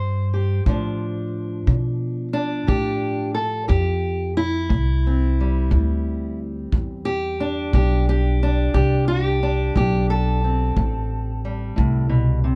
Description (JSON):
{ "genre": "acoustic country blues, solo or duo", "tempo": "59 BPM (dotted quarters)", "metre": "12/8", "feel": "straight", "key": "A minor", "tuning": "A4 = 438 Hz", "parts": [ { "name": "fingerpicked steel-string acoustic guitar", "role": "melody", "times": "0.0-12.6 s", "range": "A2 to C5", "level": "-26 LUFS", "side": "equal", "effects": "none" }, { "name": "upright bass", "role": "bass", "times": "0.0-12.6 s", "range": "A1 to B2", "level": "-24 LUFS", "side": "equal", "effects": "none" }, { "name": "kick drum", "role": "drums", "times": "0.7-11.9 s", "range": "none", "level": "-25 LUFS", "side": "equal", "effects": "none" } ], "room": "little or no reverb", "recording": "dark, warm production", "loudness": "-21 LUFS", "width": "mono", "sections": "0.0-12.6 A section", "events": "none", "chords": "0.0 Am7; 0.7 Dm7; 4.7 Am7" }